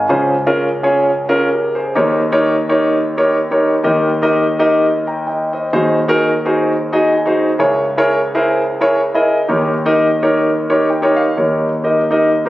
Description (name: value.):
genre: gospel.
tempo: 128 BPM.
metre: 4/4.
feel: swing 56% on 8ths.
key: unclear.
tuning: A4 = 442 Hz.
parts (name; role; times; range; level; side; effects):
warm concert grand piano; solo; 0.0-12.5 s; Db2 to Bb5; -12 LUFS; equal; none.
room: moderate concert hall reverb, RT60 2.3 s.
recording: recorded on a phone in the room, studio ambience.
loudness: -12 LUFS.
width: side -16 dB against mid.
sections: 0.0-11.4 A section; 11.4-12.5 B section.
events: grand piano fill 6.7-7.6, 10.7-11.4.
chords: 0.1 Dbmaj7; 2.0 Eb7; 5.7 Ab7/Eb; 7.6 Dbm6; 9.5 Eb7.